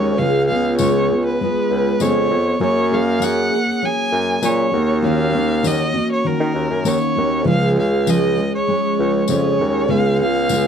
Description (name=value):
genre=acoustic pop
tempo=99 BPM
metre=4/4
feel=straight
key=Db major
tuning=A4 = 439 Hz
part: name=warm violin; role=melody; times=0.0-10.7 s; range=Bb4 to Ab5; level=-22 LUFS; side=equal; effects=none
part: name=picked steel-string acoustic guitar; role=accompaniment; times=0.0-10.7 s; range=Db3 to Ab4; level=-18 LUFS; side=right 1 dB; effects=double-tracked left and right
part: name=warm bassoon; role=bass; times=0.0-10.7 s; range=Db2 to Eb3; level=-20 LUFS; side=left 1 dB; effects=none
part: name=tambourine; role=percussion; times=0.8-10.6 s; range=none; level=-30 LUFS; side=left 17 dB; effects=none
room=light reverb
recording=dry, close 1970s-style studio recording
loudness=-15 LUFS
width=side -7 dB against mid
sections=0.0-10.7 A section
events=none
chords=0.2 Db7; 2.6 Gbadd9; 4.7 Ebm7; 7.5 Db; 9.9 Db7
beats=| 0.18 0.79 1.40 2.00 | 2.61 3.22 3.83 4.43 | 5.04 5.65 6.25 6.86 | 7.47 8.07 8.68 9.29 | 9.89 10.50